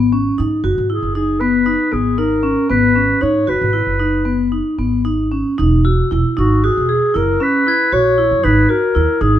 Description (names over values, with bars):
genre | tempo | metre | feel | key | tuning
contemporary instrumental, chamber music in an uneven meter | 232 BPM (eighths) | 11/8 | straight | G# minor | A4 = 441 Hz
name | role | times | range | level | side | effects
vibraphone with medium hard mallets | arpeggios | 0.0-9.4 s | B3 to G#4 | -16 LUFS | left 1 dB | none
upright bass | bass | 0.0-9.4 s | E1 to G#2 | -18 LUFS | right 1 dB | none
mellow clarinet | melody | 0.9-9.4 s | F#4 to C#5 | -17 LUFS | left 1 dB | none
glockenspiel with soft plastic mallets | texture | 5.8-8.4 s | E6 to G#6 | -27 LUFS | left 7 dB | none
room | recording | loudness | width
little or no reverb | close, detailed microphones | -13 LUFS | side -11 dB against mid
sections
0.0-5.6 A section; 5.6-9.4 B section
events
none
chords
0.0 G#m7; 5.6 Emaj7; 7.1 F#7; 8.4 G#sus2